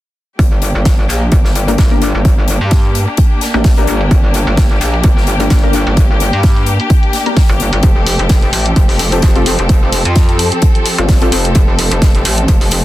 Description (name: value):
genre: bass house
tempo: 129 BPM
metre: 4/4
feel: swing 55% on 16ths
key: G minor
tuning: A4 = 440 Hz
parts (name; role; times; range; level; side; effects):
- rich studio string section; sustained chords; 0.4-12.8 s; F3 to A4; -19 LUFS; left 1 dB; vintage 12-bit sampler grit, sidechain pumping
- metallic wobble bass; bass; 0.4-12.8 s; F1 to G2; -15 LUFS; equal; distortion, chorus, tube saturation, sidechain pumping
- big rock drum kit; drums; 0.4-12.8 s; hi-hat, snare drum; -24 LUFS; left 4 dB; sidechain pumping on hats, high-pass filter on hats, high-pass filter on snare, high-pass filter on room
- electronic hi-hat; drums; 0.4-12.8 s; none; -19 LUFS; equal; low-pass filter on hats, low-pass filter on room
- electronic kick drum; drums; 0.4-12.6 s; none; -10 LUFS; equal; none
- orchestra-hit-like synth stab; stabs; 1.7-11.4 s; Bb3 to Bb4; -20 LUFS; left 3 dB; built-in reverb, sidechain pumping, dub echo
room: small room ambience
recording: dense, heavily limited modern master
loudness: -9 LUFS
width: side -15 dB against mid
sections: 0.4-12.8 A section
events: filter sweep on synth stab 0.4-12.8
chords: 0.4 Gm; 7.8 Fadd9